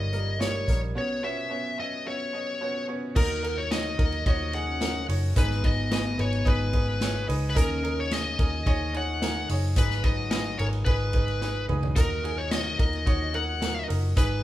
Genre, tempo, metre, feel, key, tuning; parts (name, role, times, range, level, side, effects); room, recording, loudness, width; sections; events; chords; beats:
piano-driven pop; 109 BPM; 4/4; straight; A4 = 440 Hz
smooth overdriven lead guitar; melody; 0.0-14.4 s; A#4 to F#5; -31 LUFS; left 2 dB
bright upright piano; accompaniment; 0.0-14.4 s; G2 to E5; -32 LUFS; right 1 dB
vintage muted fingered electric bass; bass; 0.0-14.4 s; F#1 to D#2; -29 LUFS; equal
unplugged drum kit; drums; 0.1-14.3 s; crash cymbal, hi-hat, kick drum, ride cymbal, snare drum, toms; -26 LUFS; equal
dark French horn section; second line; 3.2-14.4 s; B2 to G#4; -38 LUFS; left 2 dB
moderate large studio reverb, RT60 1.1 s; band playing live in one room; -24 LUFS; side -14 dB against mid
0.0-3.2 A section; 3.2-14.4 B section
break 1.0-3.2; drum fill 11.4-12.0
0.0 D#/G; 1.0 Bsus2; 3.2 D#m; 5.4 G#m; 7.6 D#sus4; 9.8 G#m; 12.0 D#m
0.41 | 0.96 1.51 2.06 2.61 | 3.16 3.71 4.26 4.81 | 5.36 5.91 6.46 7.01 | 7.57 8.12 8.67 9.22 | 9.77 10.32 10.87 11.42 | 11.97 12.52 13.07 13.62 | 14.17